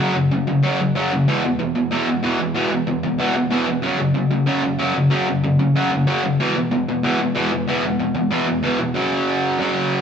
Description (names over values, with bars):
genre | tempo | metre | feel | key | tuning
punk | 188 BPM | 4/4 | straight | unclear | A4 = 440 Hz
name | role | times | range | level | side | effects
cranked stack guitar | solo | 0.0-10.0 s | E2 to F#3 | -17 LUFS | equal | overdrive
room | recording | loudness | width
wet large studio reverb, RT60 1.3 s | band playing live in one room, nothing above 8.0 kHz | -17 LUFS | side -7 dB against mid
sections
0.0-9.0 A section; 9.0-10.0 B section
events
none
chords
0.0 F#5; 1.3 E5; 3.8 F#5; 6.4 E5; 9.0 F#5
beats
| 0.00 0.32 0.64 0.96 | 1.28 1.60 1.92 2.24 | 2.56 2.88 3.20 3.52 | 3.84 4.16 4.48 4.80 | 5.12 5.44 5.76 6.08 | 6.40 6.72 7.04 7.36 | 7.68 8.00 8.32 8.64 | 8.96 9.28 9.60 9.91